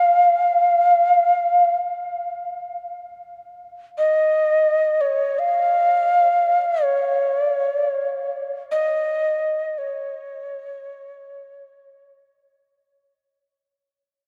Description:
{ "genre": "world meditative, free-time meditation music", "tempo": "free time", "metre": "none", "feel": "none", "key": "unclear", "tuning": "A4 = 441 Hz", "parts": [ { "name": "breathy mellow Native American-style cedar flute", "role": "solo", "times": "0.0-12.2 s", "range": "Db5 to F5", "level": "-20 LUFS", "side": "equal", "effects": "delay" } ], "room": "wet huge ambient reverb, RT60 7.0 s", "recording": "cassette tape", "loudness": "-20 LUFS", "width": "mono", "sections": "0.0-14.3 A section", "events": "fade-out 1.5-14.3", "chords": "none", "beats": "free time" }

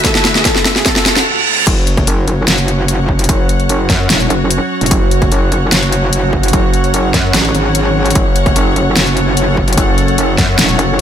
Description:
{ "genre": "heavy wobble dubstep", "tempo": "148 BPM", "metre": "4/4", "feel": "half-time", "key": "F# minor", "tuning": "A4 = 438 Hz", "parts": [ { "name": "soft supersaw", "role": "melody", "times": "0.0-1.2 s", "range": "G#4 to A4", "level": "-21 LUFS", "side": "equal", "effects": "tape echo" }, { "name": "evolving wavetable pad", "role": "sustained chords", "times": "0.0-11.0 s", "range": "D2 to A4", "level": "-20 LUFS", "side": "right 3 dB", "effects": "chorus, built-in reverb, vintage 12-bit sampler grit, sidechain pumping" }, { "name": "dubstep drum kit", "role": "drums", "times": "0.0-10.9 s", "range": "crash cymbal, hi-hat, snare drum", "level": "-15 LUFS", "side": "left 1 dB", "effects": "overdrive, studio reverb" }, { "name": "electronic kick drum", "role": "drums", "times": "0.0-10.5 s", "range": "none", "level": "-16 LUFS", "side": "equal", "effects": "distortion, studio reverb" }, { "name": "riser and reverse cymbal", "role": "sound effects", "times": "0.0-1.7 s", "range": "none", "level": "-17 LUFS", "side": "right 4 dB", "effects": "none" }, { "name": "rich studio string section", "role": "texture", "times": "0.0-11.0 s", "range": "D3 to F#5", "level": "-20 LUFS", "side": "left 3 dB", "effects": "sidechain pumping" }, { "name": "metallic wobble bass", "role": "bass", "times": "1.7-11.0 s", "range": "F#1 to A1", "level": "-15 LUFS", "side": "equal", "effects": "chorus, overdrive" }, { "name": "metallic wobble bass", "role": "bass", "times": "2.5-10.8 s", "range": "E1 to F#2", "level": "-14 LUFS", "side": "equal", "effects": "distortion, chorus, overdrive" } ], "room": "light reverb", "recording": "none", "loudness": "-10 LUFS", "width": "side -9 dB against mid", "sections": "0.0-1.7 A section; 1.7-11.0 B section", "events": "build-up 0.0-1.7; drum fill 0.0-1.3; reverse cymbal 0.9-1.7; drop 1.7-11.0", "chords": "0.0 Dadd9; 1.7 F#5", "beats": "| 0.05 0.45 0.86 1.26 | 1.67 2.07 2.48 2.88 | 3.29 3.69 4.10 4.50 | 4.91 5.32 5.72 6.13 | 6.53 6.94 7.34 7.75 | 8.15 8.56 8.96 9.37 | 9.78 10.18 10.59 10.99" }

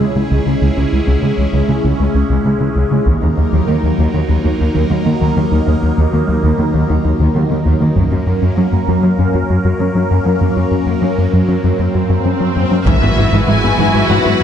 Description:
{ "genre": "cinematic, hybrid orchestral and electronic film score", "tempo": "98 BPM", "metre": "4/4", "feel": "straight", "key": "unclear", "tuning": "A4 = 440 Hz", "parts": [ { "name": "phased analog pad", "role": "sustained chords", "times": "0.0-14.4 s", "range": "F#3 to E5", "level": "-19 LUFS", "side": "equal", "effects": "phaser, chorus" }, { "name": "tight sequenced synth", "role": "arpeggios", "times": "0.0-14.3 s", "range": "C#3 to F#4", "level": "-21 LUFS", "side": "right 1 dB", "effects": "chorus, ping-pong delay" }, { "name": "rubbery square bass", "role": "riff", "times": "0.0-14.4 s", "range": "C#2 to G#3", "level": "-16 LUFS", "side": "left 2 dB", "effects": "none" }, { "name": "rich symphonic cello section", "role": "bass", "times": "0.0-14.3 s", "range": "C#2 to G#2", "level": "-18 LUFS", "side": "right 3 dB", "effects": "none" }, { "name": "taiko ensemble", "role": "drums", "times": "3.1-4.2, 8.0-9.2, 12.9-14.0 s", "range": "none", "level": "-21 LUFS", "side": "equal", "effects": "none" }, { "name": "swell and impact", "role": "sound effects", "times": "11.4-14.4 s", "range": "none", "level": "-23 LUFS", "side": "left 1 dB", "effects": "none" }, { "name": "clear studio violin section", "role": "melody", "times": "12.9-14.4 s", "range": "E5 to G#5", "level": "-20 LUFS", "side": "left 4 dB", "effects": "none" }, { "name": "bright symphonic violin section", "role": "second line", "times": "12.9-14.4 s", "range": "F#4 to B4", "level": "-20 LUFS", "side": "left 3 dB", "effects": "none" }, { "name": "clear symphonic viola section", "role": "accompaniment", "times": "12.9-14.4 s", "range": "E3 to E4", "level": "-19 LUFS", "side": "right 2 dB", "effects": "none" }, { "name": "warm French horn section", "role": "sustained chords", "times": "12.9-14.4 s", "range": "E3 to G#3", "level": "-22 LUFS", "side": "left 3 dB", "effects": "none" }, { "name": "clear symphonic double bass section", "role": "bass", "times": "12.9-14.1 s", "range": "G#1", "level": "-21 LUFS", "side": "right 4 dB", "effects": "none" } ], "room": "wet scoring stage reverb, RT60 1.7 s", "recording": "dark, warm production", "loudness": "-12 LUFS", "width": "side -9 dB against mid", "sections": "0.0-12.9 A section; 12.9-14.4 B section", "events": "build-up 0.0-12.9; swell 11.4-12.9; impact 12.9-14.4", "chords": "0.0 C#m; 3.1 D#m; 8.0 F#; 12.9 Esus2/G#", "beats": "0.01 | 0.62 1.23 1.84 2.46 | 3.07 3.68 4.29 4.90 | 5.52 6.13 6.74 7.35 | 7.96 8.58 9.19 9.80 | 10.41 11.03 11.64 12.25 | 12.86 13.48 14.09" }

